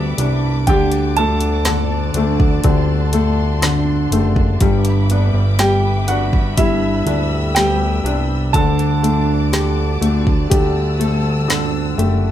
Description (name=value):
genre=pop ballad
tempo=61 BPM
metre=4/4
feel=straight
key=unclear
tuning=A4 = 440 Hz
part: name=clear baby grand piano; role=melody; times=0.0-9.5 s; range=E4 to A5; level=-21 LUFS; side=right 2 dB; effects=none
part: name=felt-muted upright piano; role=accompaniment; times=0.0-12.3 s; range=D3 to G4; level=-20 LUFS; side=left 5 dB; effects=none
part: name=warm studio string section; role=sustained chords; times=0.0-12.3 s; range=G3 to E6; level=-28 LUFS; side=left 1 dB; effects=none
part: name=fingerpicked steel-string acoustic guitar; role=arpeggios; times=0.0-12.3 s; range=G2 to A4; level=-24 LUFS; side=right 5 dB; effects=none
part: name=fat analog bass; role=bass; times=0.0-12.3 s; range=F#1 to D2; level=-18 LUFS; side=equal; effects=none
part: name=deep house drum kit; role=drums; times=0.2-12.2 s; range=hi-hat, kick drum, snare drum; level=-18 LUFS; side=equal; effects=none
room=light reverb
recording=none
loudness=-14 LUFS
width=side -11 dB against mid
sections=0.0-12.3 A section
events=none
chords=0.0 G6; 0.7 Dsus4; 4.6 G6; 8.5 Dsus4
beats=| 0.68 1.66 2.64 3.63 | 4.61 5.59 6.58 7.56 | 8.54 9.53 10.51 11.50